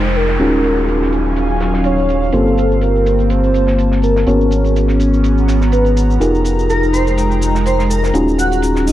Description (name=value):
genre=deep house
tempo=124 BPM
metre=4/4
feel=swing 55% on 16ths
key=unclear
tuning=A4 = 439 Hz
part: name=warm velvety synth lead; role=melody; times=0.0-6.2 s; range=A4 to Db5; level=-20 LUFS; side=equal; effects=chorus, tape echo
part: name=mellow FM electric piano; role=stabs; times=0.0-8.9 s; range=Bb3 to Db5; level=-17 LUFS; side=left 1 dB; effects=chorus, low-pass filter, tape echo
part: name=round analog bass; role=bass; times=0.0-8.9 s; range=Eb1 to Ab1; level=-16 LUFS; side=equal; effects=none
part: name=damped 70s drum kit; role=drums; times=0.0-8.9 s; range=hi-hat, snare drum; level=-32 LUFS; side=right 2 dB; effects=high-pass filter on hats, low-pass filter on hats, high-pass filter on snare, low-pass filter on snare, high-pass filter on room, low-pass filter on room
part: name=downlifter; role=sound effects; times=0.0-2.3 s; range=none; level=-25 LUFS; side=equal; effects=none
part: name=airy breathy pad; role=texture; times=0.0-8.9 s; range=Gb3 to Bb5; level=-21 LUFS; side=right 1 dB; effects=chorus
part: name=shaker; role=drums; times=0.1-8.9 s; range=none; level=-32 LUFS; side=left 1 dB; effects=low-pass filter on snare, low-pass filter on perc, low-pass filter on hats, low-pass filter on room
part: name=airy dreamy lead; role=melody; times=6.7-8.9 s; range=Eb4 to C5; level=-19 LUFS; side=right 2 dB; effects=chorus, phaser, vintage 12-bit sampler grit, tape echo
room=light reverb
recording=none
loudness=-12 LUFS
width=side -13 dB against mid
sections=0.0-8.9 A section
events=none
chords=0.4 Ebm11; 2.3 Gm11; 4.3 Abm11; 6.2 Fm11; 8.1 Ebm11